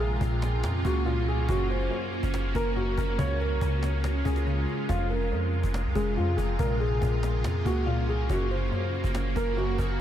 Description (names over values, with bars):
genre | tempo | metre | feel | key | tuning
hip hop, trap | 141 BPM | 4/4 | half-time | unclear | A4 = 441 Hz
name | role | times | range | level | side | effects
dark concert grand piano | melody | 0.0-10.0 s | F4 to Db5 | -31 LUFS | equal | analog chorus, low-pass filter, diffuse ambient delay
glassy wavetable pluck | accompaniment | 0.0-10.0 s | F2 to Db4 | -32 LUFS | left 2 dB | chorus, low-pass filter
granular cloud pad | sustained chords | 0.0-10.0 s | C3 to Gb4 | -33 LUFS | right 2 dB | built-in reverb
long sustained 808-style bass | bass | 0.0-10.0 s | F1 to F2 | -28 LUFS | equal | none
cajon | drums | 0.0-9.9 s | none | -38 LUFS | equal | none
room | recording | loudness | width
moderate huge ambient reverb, RT60 8.1 s | dreamy mix soaked in reverb | -25 LUFS | side -11 dB against mid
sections
0.0-10.0 A section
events
none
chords
0.0 Bbm; 1.5 Gb; 3.2 Db; 4.9 Fm; 6.6 Bbm; 8.3 Gb